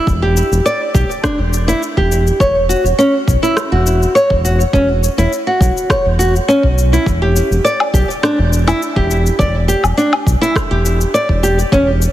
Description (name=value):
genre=organic downtempo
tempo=103 BPM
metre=4/4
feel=straight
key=E dorian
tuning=A4 = 440 Hz
part: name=nylon-string guitar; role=arpeggios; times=0.0-11.9 s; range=C#4 to D5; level=-14 LUFS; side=equal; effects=vintage 12-bit sampler grit, digital delay
part: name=round analog bass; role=bass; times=0.1-12.1 s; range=E1 to B1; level=-14 LUFS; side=equal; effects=sidechain pumping
part: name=electronic kick drum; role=drums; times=0.1-11.8 s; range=none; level=-18 LUFS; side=equal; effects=overdrive, studio ambience
part: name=electronic shaker, rim click and woodblock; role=drums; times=0.1-12.1 s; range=none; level=-22 LUFS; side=left 2 dB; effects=studio ambience
room=light reverb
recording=heavily compressed radio sound, multiband compression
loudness=-11 LUFS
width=side -13 dB against mid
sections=0.0-12.1 A section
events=none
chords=0.0 Em7; 2.4 F#5/E; 7.1 Em7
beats=| 0.07 0.66 1.24 1.82 | 2.40 2.99 3.57 4.15 | 4.73 5.32 5.90 6.48 | 7.06 7.65 8.23 8.81 | 9.39 9.98 10.56 11.14 | 11.72